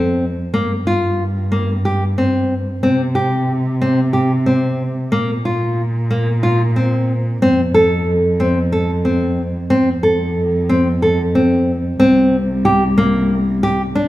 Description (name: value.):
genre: contemporary instrumental, chamber music in an uneven meter.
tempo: 183 BPM (eighths).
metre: 7/8.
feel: straight.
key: F major.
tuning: A4 = 440 Hz.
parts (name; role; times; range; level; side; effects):
nylon-string guitar; arpeggios; 0.0-14.1 s; Bb3 to A4; -16 LUFS; equal; none.
dark cello; bass; 0.0-14.1 s; C2 to C3; -18 LUFS; equal; none.
room: wet recital hall reverb, RT60 1.9 s.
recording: minimal, uncompressed stereo recording.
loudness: -14 LUFS.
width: side -15 dB against mid.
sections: 0.0-12.0 A section; 12.0-14.1 B section.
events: none.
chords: 0.0 F5; 0.5 Gm7; 2.8 C5; 5.1 Bb5; 7.4 F; 12.0 C5.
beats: 0.20 | 0.53 0.86 1.19 1.51 1.84 2.17 2.50 | 2.83 3.15 3.48 3.81 4.14 4.47 4.80 | 5.12 5.45 5.78 6.11 6.44 6.76 7.09 | 7.42 7.75 8.07 8.40 8.73 9.06 9.38 | 9.71 10.04 10.37 10.69 11.02 11.35 11.68 | 12.00 12.33 12.66 12.98 13.31 13.63 13.96.